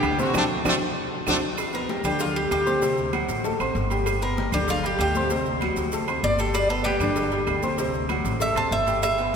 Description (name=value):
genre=latin, salsa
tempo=193 BPM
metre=4/4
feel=straight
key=G major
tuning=A4 = 444 Hz
part: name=clear trumpet section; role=melody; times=0.0-1.4 s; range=A3 to G4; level=-28 LUFS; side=equal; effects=none
part: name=clear baby grand piano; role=accompaniment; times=0.0-9.3 s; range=C3 to C6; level=-27 LUFS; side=left 1 dB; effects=none
part: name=upright bass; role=bass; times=0.0-9.4 s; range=G1 to G2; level=-30 LUFS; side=equal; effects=none
part: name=claves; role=percussion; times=0.0-9.2 s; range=none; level=-39 LUFS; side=right 7 dB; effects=none
part: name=congas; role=percussion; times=0.0-9.3 s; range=none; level=-33 LUFS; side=left 3 dB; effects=none
part: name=cowbell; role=percussion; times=0.0-9.2 s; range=none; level=-36 LUFS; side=left 4 dB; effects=none
part: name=maracas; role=percussion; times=0.0-9.4 s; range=none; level=-41 LUFS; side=right 5 dB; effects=none
part: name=timbales and agogo bells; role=percussion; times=0.0-9.3 s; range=none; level=-32 LUFS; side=right 5 dB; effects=none
part: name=Cuban tres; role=melody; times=1.7-9.3 s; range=B3 to A5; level=-26 LUFS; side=equal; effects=none
room=wet cathedral reverb, RT60 4.9 s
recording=recorded in a church or concert hall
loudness=-21 LUFS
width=side -6 dB against mid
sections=0.0-1.6 A section; 1.6-9.4 B section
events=drum fill 0.3-1.6; band accent 0.3-1.6; Cuban tres solo 1.6-9.4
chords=0.3 D7; 1.6 G; 2.8 D7; 4.1 G; 5.3 D7; 6.5 G; 7.8 D7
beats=0.03 | 0.34 0.65 0.96 1.27 | 1.58 1.89 2.20 2.51 | 2.82 3.13 3.44 3.75 | 4.06 4.37 4.68 4.99 | 5.30 5.62 5.92 6.24 | 6.55 6.86 7.17 7.48 | 7.79 8.10 8.41 8.72 | 9.03 9.34